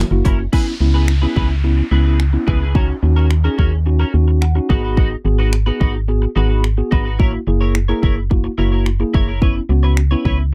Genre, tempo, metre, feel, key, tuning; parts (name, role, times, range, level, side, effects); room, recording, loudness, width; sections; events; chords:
dance-pop; 108 BPM; 4/4; straight; C# dorian; A4 = 439 Hz
mellow tine electric piano; accompaniment; 0.0-10.4 s; A#3 to F#5; -24 LUFS; equal
string machine, full ensemble; sustained chords; 0.0-0.5 s; F#3 to A#4; -38 LUFS; equal
organ-like FM bass; bass; 0.0-10.5 s; F#1 to D#2; -18 LUFS; equal; sidechain pumping
twelve-string electric guitar; riff; 0.1-10.4 s; C#4 to C#5; -28 LUFS; equal; lush chorus
pop drum kit; drums; 0.2-10.4 s; crash cymbal, finger snaps, hi-hat, kick drum; -19 LUFS; equal
downlifter; sound effects; 0.5-5.0 s; -36 LUFS; equal
little or no reverb; dry, close 1970s-style studio recording; -16 LUFS; mono
0.5-10.5 A section
tine electric piano fill 4.1-5.0
0.0 F#7; 0.5 C#m7; 2.8 D#m7; 4.7 G#m7; 7.2 F#7; 9.4 C#m7